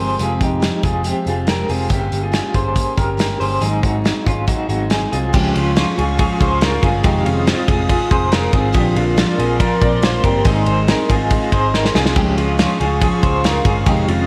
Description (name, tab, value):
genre	jangly indie pop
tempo	141 BPM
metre	4/4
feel	straight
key	unclear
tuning	A4 = 443 Hz
part	picked steel-string acoustic guitar	accompaniment	0.0-14.3 s	F2 to Ab4	-25 LUFS	equal	none
part	electric guitar through a small old amp	arpeggios	0.0-14.3 s	C4 to D5	-23 LUFS	equal	tremolo
part	vintage muted picked electric bass	bass	0.0-14.3 s	F1 to Db2	-23 LUFS	equal	none
part	loose indie drum kit	drums	0.2-14.2 s	crash cymbal, hi-hat, kick drum, ride cymbal, snare drum	-21 LUFS	equal	none
part	hollow soft pad	sustained chords	5.3-14.3 s	Ab4 to Eb6	-27 LUFS	equal	chorus
room	moderate lush hall reverb, RT60 1.6 s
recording	big arena sound, vinyl crackle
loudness	-17 LUFS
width	mono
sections	0.0-5.3 A section; 5.3-14.3 B section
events	drum fill 11.7-12.2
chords	0.0 Fmadd9; 1.9 Gdim; 3.6 Ab7; 5.3 Db; 7.0 Fm7; 8.7 Bbadd9; 10.5 Ab; 12.2 Db